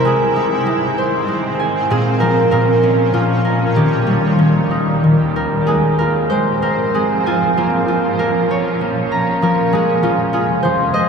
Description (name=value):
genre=children's music, lullaby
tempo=97 BPM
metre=3/4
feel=rubato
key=Ab major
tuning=A4 = 440 Hz
part: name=concert harp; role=melody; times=0.0-11.1 s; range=Bb2 to Bb5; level=-14 LUFS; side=equal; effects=diffuse ambient delay
part: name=granular cloud pad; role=sustained chords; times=0.0-11.1 s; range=Eb2 to Db4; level=-20 LUFS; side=right 2 dB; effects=built-in reverb
room=wet huge ambient reverb, RT60 4.8 s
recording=dreamy mix soaked in reverb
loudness=-13 LUFS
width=side -6 dB against mid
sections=0.0-5.7 A section; 5.7-11.1 B section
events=none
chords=0.1 Ab; 1.9 Bbm; 3.8 Eb; 5.7 Ab6; 7.6 Bbm; 9.4 Fm